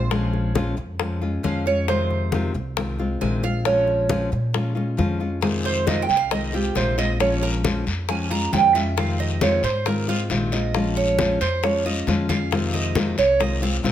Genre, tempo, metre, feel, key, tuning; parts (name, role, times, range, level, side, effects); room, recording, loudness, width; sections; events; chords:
latin, Cuban son and guajira; 135 BPM; 4/4; straight; F minor; A4 = 440 Hz
nylon-string guitar; accompaniment; 0.0-13.9 s; C3 to F4; -25 LUFS; left 3 dB
Cuban tres; arpeggios; 0.0-13.8 s; F4 to Bb5; -23 LUFS; right 5 dB
upright bass; bass; 0.0-13.9 s; Bb1 to Bb2; -26 LUFS; equal
bongos; percussion; 0.1-13.9 s; -30 LUFS; left 9 dB
congas; percussion; 0.1-13.9 s; -29 LUFS; left 3 dB
guiro; percussion; 5.4-13.9 s; -32 LUFS; left 6 dB
light reverb; close, detailed microphones; -19 LUFS; side -11 dB against mid
0.0-13.9 A section
Cuban tres solo 0.0-13.9
0.1 Bbm7; 1.9 Fm7; 3.7 Bbm7; 5.4 Fm7; 7.2 Bbm7; 9.0 Fm7